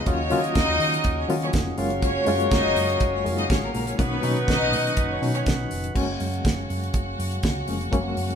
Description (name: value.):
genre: disco.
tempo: 122 BPM.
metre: 4/4.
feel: straight.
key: F# major.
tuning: A4 = 440 Hz.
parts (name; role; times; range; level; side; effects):
clear studio string section; second line; 0.0-8.4 s; A#3 to F#5; -28 LUFS; left 2 dB; none.
reed electric piano; accompaniment; 0.0-8.4 s; A#2 to E#4; -28 LUFS; left 3 dB; fast tremolo.
percussive tonewheel organ; sustained chords; 0.0-8.4 s; C#3 to E#5; -32 LUFS; equal; overdrive, stopped rotary speaker.
warm horn section; stabs; 0.1-5.7 s; D#4 to D#5; -28 LUFS; right 1 dB; none.
hollow-body short-scale fingered electric bass; bass; 0.1-8.4 s; E#1 to D#3; -29 LUFS; right 1 dB; none.
damped 70s drum kit; drums; 0.1-8.4 s; crash cymbal, hi-hat, kick drum, snare drum; -26 LUFS; right 1 dB; none.
room: wet stone room reverb, RT60 1.3 s.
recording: band playing live in one room.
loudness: -21 LUFS.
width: side -8 dB against mid.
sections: 0.0-6.0 A section; 6.0-8.4 B section.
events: none.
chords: 0.1 D#m7; 1.8 F#maj7; 4.0 Bmaj7; 6.0 F#maj7.